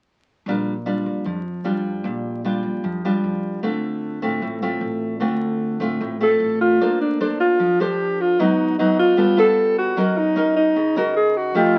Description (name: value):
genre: bossa nova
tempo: 152 BPM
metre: 4/4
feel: straight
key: Bb major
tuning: A4 = 445 Hz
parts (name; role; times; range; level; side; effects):
- nylon-string guitar; accompaniment; 0.5-11.8 s; Ab2 to C5; -24 LUFS; equal; none
- upright bass; bass; 0.5-6.8 s; A1 to F2; -36 LUFS; equal; none
- breathy alto saxophone; melody; 6.2-11.8 s; D4 to A4; -20 LUFS; equal; none
room: moderate studio reverb, RT60 0.6 s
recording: very old 78 rpm record, vinyl crackle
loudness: -20 LUFS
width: mono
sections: 0.5-6.8 A section; 6.8-11.8 B section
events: none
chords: 0.5 Bb6; 3.6 Dm7; 6.8 Bbmaj9; 8.4 Abm7; 9.2 G9; 10.0 Gb6